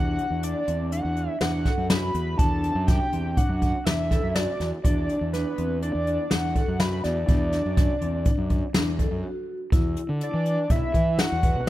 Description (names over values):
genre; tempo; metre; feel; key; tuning
progressive instrumental, band music in an uneven meter; 123 BPM; 5/4; straight; unclear; A4 = 440 Hz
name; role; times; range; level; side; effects
hollow square lead; melody; 0.0-11.7 s; B4 to B5; -29 LUFS; equal; chorus
vibraphone with medium hard mallets; arpeggios; 0.0-11.6 s; C4 to B4; -31 LUFS; left 1 dB; none
fuzz fingered electric bass; bass; 0.0-11.7 s; B1 to E3; -28 LUFS; equal; overdrive
jazz brush drum kit; drums; 0.2-11.5 s; hi-hat, kick drum, snare drum; -24 LUFS; equal; none
mellow flugelhorn; second line; 10.2-11.7 s; D4 to F#4; -34 LUFS; right 3 dB; tape echo
room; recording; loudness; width
light reverb, small room ambience; rough home demo mix; -22 LUFS; side -15 dB against mid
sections
0.0-9.7 A section; 9.7-11.7 B section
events
break 9.2-9.7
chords
0.0 Bm/E; 9.7 E7sus2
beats
0.43 0.92 1.41 1.90 | 2.39 2.88 3.37 3.86 4.35 | 4.84 5.33 5.82 6.31 6.80 | 7.29 7.77 8.26 8.75 9.24 | 9.73 10.21 10.70 11.19 11.68